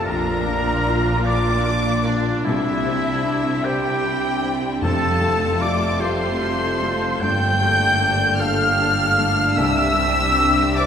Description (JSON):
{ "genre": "cinematic, emotional film score for orchestra", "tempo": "50 BPM (dotted quarters)", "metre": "6/8", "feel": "rubato", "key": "F major", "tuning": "A4 = 440 Hz", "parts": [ { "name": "rich studio violin section", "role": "melody", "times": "0.0-10.9 s", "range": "D5 to G6", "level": "-27 LUFS", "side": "left 2 dB", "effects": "none" }, { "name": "bright concert flute", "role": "second line", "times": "0.0-10.9 s", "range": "D5 to G6", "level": "-24 LUFS", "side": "equal", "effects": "none" }, { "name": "warm clarinet", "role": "second line", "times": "0.0-10.9 s", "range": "D4 to G5", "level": "-28 LUFS", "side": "left 1 dB", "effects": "none" }, { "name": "warm oboe", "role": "second line", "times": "0.0-10.9 s", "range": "D4 to G5", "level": "-25 LUFS", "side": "equal", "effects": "none" }, { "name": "warm studio violin section", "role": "second line", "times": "0.0-10.9 s", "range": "D4 to A4", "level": "-30 LUFS", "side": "left 3 dB", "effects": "none" }, { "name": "felt-muted upright piano", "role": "accompaniment", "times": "0.0-10.9 s", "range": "Bb1 to D5", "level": "-29 LUFS", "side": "left 1 dB", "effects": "none" }, { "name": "dark French horn section", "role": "sustained chords", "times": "0.0-10.9 s", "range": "G3 to A4", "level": "-29 LUFS", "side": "left 2 dB", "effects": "none" }, { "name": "concert harp", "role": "arpeggios", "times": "0.0-10.9 s", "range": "F2 to D5", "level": "-29 LUFS", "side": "left 1 dB", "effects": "none" }, { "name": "clear studio double bass section", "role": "bass", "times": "0.0-10.9 s", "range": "F1 to C2", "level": "-28 LUFS", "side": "right 1 dB", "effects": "none" }, { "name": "warm studio cello section", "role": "bass", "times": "0.0-10.9 s", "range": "C2 to C3", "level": "-27 LUFS", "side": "right 2 dB", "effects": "none" }, { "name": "warm studio viola section", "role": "accompaniment", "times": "0.1-10.9 s", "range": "G3 to D4", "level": "-30 LUFS", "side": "right 2 dB", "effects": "none" }, { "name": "timpani", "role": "percussion", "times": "2.4-6.0, 9.6-10.7 s", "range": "F2 to C3", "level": "-30 LUFS", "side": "right 1 dB", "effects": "none" } ], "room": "wet church reverb, RT60 3.1 s", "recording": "recorded in a church or concert hall", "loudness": "-17 LUFS", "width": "side -8 dB against mid", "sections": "0.0-10.9 A section", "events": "none", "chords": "0.1 Bb; 2.5 Cadd9; 4.8 Fadd9; 7.2 Gmadd9; 9.6 Cadd9" }